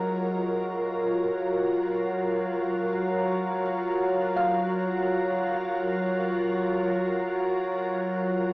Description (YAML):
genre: ambient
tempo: free time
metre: none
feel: none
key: Gb major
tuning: A4 = 440 Hz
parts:
  - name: soft additive organ-like pad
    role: sustained chords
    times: 0.0-8.5 s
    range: Gb3 to Db5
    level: -26 LUFS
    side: equal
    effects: ensemble chorus, built-in reverb
  - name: felt-muted upright piano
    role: arpeggios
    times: 0.0-8.5 s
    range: Ab3 to F5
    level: -34 LUFS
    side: equal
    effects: analog delay
  - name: hand-pumped harmonium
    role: drone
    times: 0.0-8.5 s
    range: Gb3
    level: -32 LUFS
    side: equal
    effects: none
  - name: glass harmonica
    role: texture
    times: 0.0-8.5 s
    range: Db5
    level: -35 LUFS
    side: equal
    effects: none
room: wet studio ambience, RT60 0.5 s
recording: home recording on cassette, small speaker sound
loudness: -24 LUFS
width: side -23 dB against mid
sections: 0.0-8.5 A section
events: filter sweep on ambient pad 0.0-8.5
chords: 0.0 Gbmaj7